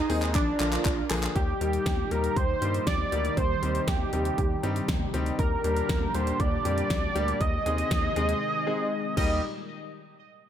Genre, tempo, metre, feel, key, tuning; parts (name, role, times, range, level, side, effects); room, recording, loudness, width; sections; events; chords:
synth-pop; 119 BPM; 4/4; straight; Eb major; A4 = 439 Hz
octave-doubled lead; melody; 0.0-9.4 s; D4 to Eb5; -29 LUFS; right 1 dB; chorus, ping-pong delay
lush unison pad; sustained chords; 0.0-9.4 s; Bb2 to Bb5; -34 LUFS; left 1 dB; chorus, phaser
clear concert grand piano; accompaniment; 0.1-9.4 s; D3 to Ab4; -33 LUFS; left 2 dB
rubbery square bass; bass; 0.1-9.4 s; Bb1 to G2; -31 LUFS; equal
pop drum kit; drums; 0.1-9.3 s; crash cymbal, handclaps, hi-hat, kick drum, snare drum; -29 LUFS; equal; gated reverb
light reverb; -24 LUFS; side -10 dB against mid
0.0-1.4 A section; 1.4-9.4 B section; 9.4-10.5 C section
drum fill 0.0-1.4; silent gap 8.4-9.4
0.3 Bb; 1.4 Eb; 3.4 Cm/Eb; 5.4 Gm/Eb; 7.4 Ab/Eb; 9.2 Eb; 9.4 N.C.